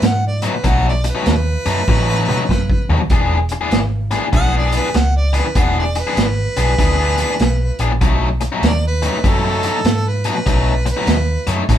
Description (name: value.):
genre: electric blues shuffle.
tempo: 98 BPM.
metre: 4/4.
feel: swing 64% on 8ths.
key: B mixolydian.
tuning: A4 = 440 Hz.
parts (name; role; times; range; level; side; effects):
clear harmonica; melody; 0.0-11.5 s; A4 to F#5; -22 LUFS; right 2 dB; none.
biting overdriven guitar; riff; 0.0-11.8 s; B2 to G#4; -20 LUFS; left 3 dB; none.
vintage muted fingered electric bass; bass; 0.0-11.8 s; E1 to A2; -18 LUFS; equal; none.
vintage drum kit; drums; 0.0-11.8 s; hi-hat, kick drum, snare drum, toms; -19 LUFS; right 1 dB; none.
room: moderate studio ambience, RT60 0.4 s.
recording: band playing live in one room.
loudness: -14 LUFS.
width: side -10 dB against mid.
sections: 0.0-11.8 A section.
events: harmonica solo 0.0-11.8; drum fill 1.9-3.1.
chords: 0.0 B7; 3.1 E7; 8.0 B7.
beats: 0.04 | 0.65 1.26 1.88 2.49 | 3.11 3.72 4.34 4.95 | 5.56 6.18 6.79 7.40 | 8.02 8.63 9.24 9.85 | 10.46 11.08 11.69.